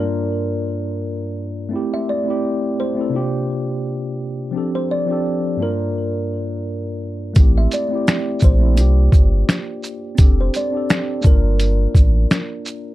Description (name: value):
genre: lo-fi hip hop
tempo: 85 BPM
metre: 4/4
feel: swing 55% on 16ths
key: G dorian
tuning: A4 = 439 Hz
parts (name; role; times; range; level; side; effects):
- kalimba; melody; 0.0-12.5 s; Bb4 to E5; -26 LUFS; equal; low-pass filter
- tine electric piano; accompaniment; 0.0-12.9 s; G2 to Bb4; -23 LUFS; equal; slow stereo tremolo, low-pass filter
- warm sub bass; bass; 7.4-12.3 s; F1 to C2; -16 LUFS; equal; none
- lo-fi sampler-style drum kit; drums; 7.4-12.8 s; finger snaps, hi-hat, kick drum, shaker, snare drum; -13 LUFS; equal; none
- maracas; percussion; 7.4-12.8 s; none; -39 LUFS; right 10 dB; none
room: little or no reverb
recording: dark, warm production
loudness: -16 LUFS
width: side -16 dB against mid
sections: 0.0-12.9 A section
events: none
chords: 0.0 Gm7; 1.7 Am7; 3.1 C9sus4; 4.5 F69; 5.6 Gm7; 7.4 Am7; 8.8 C9sus4; 10.2 F69; 11.2 Gm9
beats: 0.30 1.01 | 1.71 2.42 3.13 3.83 | 4.54 5.24 5.95 6.66 | 7.36 8.07 8.77 9.48 | 10.19 10.89 11.60 12.30